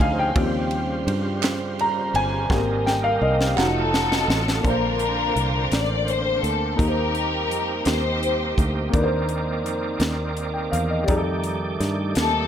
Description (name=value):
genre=slow gospel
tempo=56 BPM (dotted quarters)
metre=6/8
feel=straight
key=Bb major from 4.6 s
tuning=A4 = 440 Hz
part: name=warm upright piano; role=accompaniment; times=0.0-12.5 s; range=Bb2 to Bb5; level=-26 LUFS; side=left 1 dB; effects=none
part: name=bright tonewheel organ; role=sustained chords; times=0.0-12.5 s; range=Db3 to D5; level=-30 LUFS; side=right 4 dB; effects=slow rotary speaker, overdrive, chorus vibrato
part: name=dark French horn section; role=sustained chords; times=0.0-12.5 s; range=Db3 to C5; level=-32 LUFS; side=equal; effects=none
part: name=fingered electric bass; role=bass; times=0.0-12.5 s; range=F1 to G2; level=-26 LUFS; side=equal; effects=none
part: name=tight funk drum kit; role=drums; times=0.0-12.3 s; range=hi-hat, kick drum, ride cymbal, snare drum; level=-25 LUFS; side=equal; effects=none
part: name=group handclap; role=percussion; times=1.4-3.9 s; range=none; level=-31 LUFS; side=right 10 dB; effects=none
part: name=warm studio string section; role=melody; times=3.6-8.9, 12.2-12.5 s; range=C4 to D5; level=-24 LUFS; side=left 3 dB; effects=plate reverb
room=light reverb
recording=none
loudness=-20 LUFS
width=side -9 dB against mid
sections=0.0-4.6 A section; 4.6-12.5 B section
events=upright piano solo 0.0-4.6; drum fill 2.5-4.6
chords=0.4 Eb13; 2.5 Abmaj9; 3.6 F7b9; 4.6 Bbmaj9; 6.8 Eb6; 8.9 Cm9/Eb; 11.1 F13